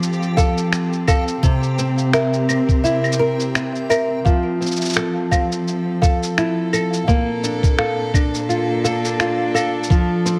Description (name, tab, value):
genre	folktronica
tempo	85 BPM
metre	4/4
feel	swing 56% on 16ths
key	F major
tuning	A4 = 440 Hz
part	dark string quartet	sustained chords	0.0-10.4 s	Bb2 to Bb4	-25 LUFS	equal	none
part	nylon-string guitar	arpeggios	0.0-10.4 s	C3 to Bb4	-23 LUFS	equal	low-pass filter, digital delay
part	electronic cabasa, finger snaps and claves	drums	0.0-10.4 s	none	-27 LUFS	equal	none
part	backwards swelling texture	texture	0.0-4.3 s	G4 to G5	-38 LUFS	equal	built-in reverb
part	marimba with medium mallets	second line	0.4-9.9 s	E5 to F5	-28 LUFS	equal	delay
part	electronic kick drum	drums	0.4-10.1 s	none	-19 LUFS	equal	none
room	light reverb, small room ambience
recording	none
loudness	-19 LUFS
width	mono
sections	0.0-4.3 A section; 4.3-10.4 A section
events	filter sweep on nylon-string guitar 0.0-4.3, 4.3-10.4; kick drops out 2.8-4.3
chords	0.0 F; 1.4 C7; 4.3 Fmaj7; 7.1 Bbmaj7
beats	0.02 0.72 | 1.43 2.14 2.84 3.55 | 4.25 4.96 5.67 6.37 | 7.08 7.78 8.49 9.20 | 9.90